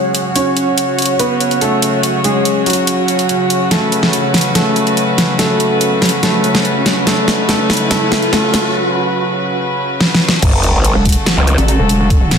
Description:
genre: heavy wobble dubstep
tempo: 143 BPM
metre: 4/4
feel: half-time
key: F# minor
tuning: A4 = 436 Hz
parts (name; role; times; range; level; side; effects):
- warm grand piano; melody; 0.0-8.7 s; F#3 to C#5; -17 LUFS; equal; tape echo
- warm chamber string section; sustained chords; 0.0-12.4 s; C#3 to C#5; -17 LUFS; equal; sidechain pumping, low-pass filter
- ethereal airy pad; texture; 0.0-8.7 s; F#4 to F#5; -23 LUFS; right 2 dB; ensemble chorus, built-in reverb, sidechain pumping
- dubstep drum kit; drums; 0.1-12.4 s; crash cymbal, hi-hat, snare drum; -15 LUFS; equal; studio reverb
- riser and sub drop; sound effects; 5.7-12.1 s; none; -22 LUFS; equal; none
- growl bass; bass; 10.4-11.6 s; F#1 to C#2; -12 LUFS; equal; chorus, overdrive
- electronic kick drum; drums; 10.4-12.2 s; none; -12 LUFS; equal; studio reverb
- pulsing pluck wobble bass; bass; 11.0-12.4 s; E1 to A1; -13 LUFS; equal; chorus, overdrive
room: moderate plate reverb, RT60 1.3 s, digital ambience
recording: dense, heavily limited modern master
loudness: -11 LUFS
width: side -6 dB against mid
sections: 0.0-10.4 A section; 10.4-12.4 B section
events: build-up 0.0-10.4; filter sweep on string section 0.0-10.4; drum fill 3.7-8.7, 10.0-10.4; riser 5.7-8.7; drop 10.4-12.4; impact 10.4-12.1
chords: 0.0 F#m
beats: | 0.36 0.78 1.20 1.61 | 2.03 2.45 2.87 3.29 | 3.71 4.13 4.55 4.97 | 5.39 5.81 6.23 6.65 | 7.07 7.49 7.91 8.33 | 8.75 9.17 9.59 10.01 | 10.43 10.85 11.27 11.68 | 12.10

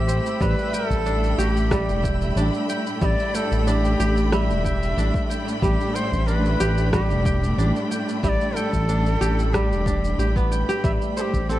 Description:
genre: organic downtempo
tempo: 92 BPM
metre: 4/4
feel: straight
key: unclear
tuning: A4 = 440 Hz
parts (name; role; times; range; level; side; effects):
- breathy bright Native American-style cedar flute; melody; 0.0-11.6 s; G4 to E5; -28 LUFS; equal; vintage 12-bit sampler grit, tape echo
- clear symphonic string section; sustained chords; 0.0-11.6 s; A2 to B5; -28 LUFS; equal; sidechain pumping
- kora; arpeggios; 0.0-11.6 s; G3 to G5; -26 LUFS; equal; vintage 12-bit sampler grit, tape echo
- smooth synth bass; bass; 0.0-11.6 s; E1 to A1; -22 LUFS; equal; none
- twinkling granular texture; texture; 0.0-11.6 s; E5 to G6; -39 LUFS; right 1 dB; built-in reverb
- electronic shaker and rim click; drums; 0.1-11.6 s; none; -32 LUFS; equal; overdrive
- electronic kick drum; drums; 0.4-11.5 s; none; -26 LUFS; equal; overdrive
room: light reverb, studio reverb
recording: dark, warm production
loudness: -19 LUFS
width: side -14 dB against mid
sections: 0.0-11.6 A section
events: none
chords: 0.4 G; 10.8 Am7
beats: | 0.41 1.06 1.71 2.37 | 3.02 3.67 4.32 4.97 | 5.63 6.28 6.93 7.58 | 8.23 8.89 9.54 10.19 | 10.84 11.49

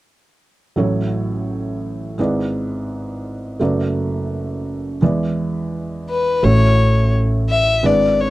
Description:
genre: acoustic folk-pop ballad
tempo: 85 BPM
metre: 4/4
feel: straight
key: A major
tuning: A4 = 440 Hz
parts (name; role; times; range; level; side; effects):
- felt-muted upright piano; accompaniment; 0.8-8.3 s; F#1 to D5; -20 LUFS; right 2 dB; none
- dark violin; melody; 6.1-8.3 s; B4 to E5; -17 LUFS; left 3 dB; none
- upright bass; bass; 6.4-8.3 s; G#1 to A1; -16 LUFS; equal; none
room: little or no reverb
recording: dry, close 1970s-style studio recording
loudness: -16 LUFS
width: side -17 dB against mid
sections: 0.8-6.4 A section; 6.4-8.3 B section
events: none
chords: 0.8 A6; 2.2 E7/G#; 3.6 Bm7/F#; 5.0 E7; 6.4 A6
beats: | 0.77 1.48 2.19 2.89 | 3.60 4.30 5.01 5.72 | 6.42 7.13 7.84

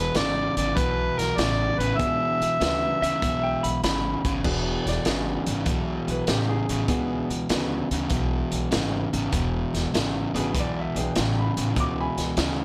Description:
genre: electric blues shuffle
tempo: 98 BPM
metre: 4/4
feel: swing 68% on 8ths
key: E mixolydian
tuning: A4 = 440 Hz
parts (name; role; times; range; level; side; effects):
- overdriven harmonica; melody; 0.0-3.8 s; A#4 to E5; -27 LUFS; equal; none
- overdriven semi-hollow guitar; riff; 0.0-12.6 s; E2 to C#3; -30 LUFS; equal; none
- upright bass; bass; 0.0-12.6 s; E1 to D2; -32 LUFS; equal; none
- crunchy breakbeat drum kit; drums; 0.1-12.6 s; crash cymbal, hi-hat, kick drum, snare drum; -31 LUFS; equal; none
- warm concert grand piano; accompaniment; 2.0-12.6 s; B3 to D6; -34 LUFS; equal; none
- clean lap steel guitar; second line; 3.0-4.3 s; E5 to B5; -32 LUFS; equal; none
room: light reverb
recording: none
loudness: -25 LUFS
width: mono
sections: 0.0-4.4 A section; 4.4-12.6 B section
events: none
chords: 0.0 E7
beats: 0.16 0.78 1.39 | 2.00 2.61 3.22 3.83 | 4.44 5.05 5.67 6.28 | 6.89 7.50 8.11 8.72 | 9.33 9.94 10.55 11.16 | 11.77 12.38

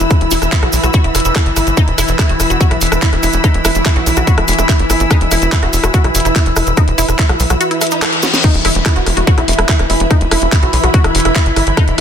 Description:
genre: psychedelic trance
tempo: 144 BPM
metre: 4/4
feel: straight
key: unclear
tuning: A4 = 440 Hz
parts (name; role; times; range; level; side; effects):
- overtone-sweeping drone; sustained chords; 0.0-12.0 s; E3 to E4; -19 LUFS; left 1 dB; chorus, built-in reverb, sidechain pumping
- tight sequencer bass; bass; 0.0-12.0 s; E1 to B1; -16 LUFS; equal; none
- garage drum kit; drums; 0.0-12.0 s; crash cymbal, handclaps, hi-hat, rim click, snare drum; -18 LUFS; left 1 dB; small room reverb, soft clipping on snare
- cabasa; percussion; 0.0-8.4 s; none; -23 LUFS; right 6 dB; none
- warm studio string section; texture; 0.0-12.0 s; E4 to E6; -22 LUFS; right 2 dB; sidechain pumping
- electronic kick drum; drums; 0.1-11.9 s; none; -12 LUFS; equal; small room reverb
- wide unison pluck; riff; 0.3-12.0 s; D#4 to E5; -20 LUFS; moving between left 2 dB and right 4 dB; auto-pan, sidechain pumping, tape echo
- reverse cymbal and downlifter; sound effects; 7.8-11.8 s; none; -22 LUFS; left 2 dB; none
room: light reverb, digital ambience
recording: dense, heavily limited modern master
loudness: -10 LUFS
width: side -8 dB against mid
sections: 0.0-8.4 A section; 8.4-12.0 B section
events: reverse cymbal 7.8-8.4; band accent 8.0; drum fill 8.2; drop 8.4-12.0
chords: 0.0 E5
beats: | 0.11 0.52 0.94 1.36 | 1.77 2.19 2.61 3.02 | 3.44 3.86 4.27 4.69 | 5.11 5.52 5.94 6.36 | 6.77 7.19 7.61 8.02 | 8.44 8.86 9.27 9.69 | 10.11 10.52 10.94 11.36 | 11.77

